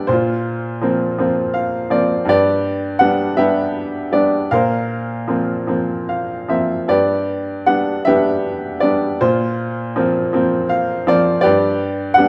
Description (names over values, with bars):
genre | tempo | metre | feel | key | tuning
classical, lyrical solo piano | 50-55 BPM (dotted quarters) | 6/8 | rubato | unclear | A4 = 439 Hz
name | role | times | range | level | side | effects
clear baby grand piano | solo | 0.0-12.3 s | G2 to F#5 | -18 LUFS | equal | none
room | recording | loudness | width
moderate recital hall reverb, RT60 1.4 s | dark, warm production | -18 LUFS | mono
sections
0.0-12.3 A section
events
grand piano fill 1.2-2.3, 5.7-6.9, 10.3-11.4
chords
0.1 Bbsus2; 2.3 G; 4.5 Bbsus2; 6.9 G; 9.2 Bbsus2; 11.4 G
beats
| 0.09 1.19 | 2.28 3.39 | 4.52 5.70 | 6.89 8.05 | 9.21 10.33 | 11.44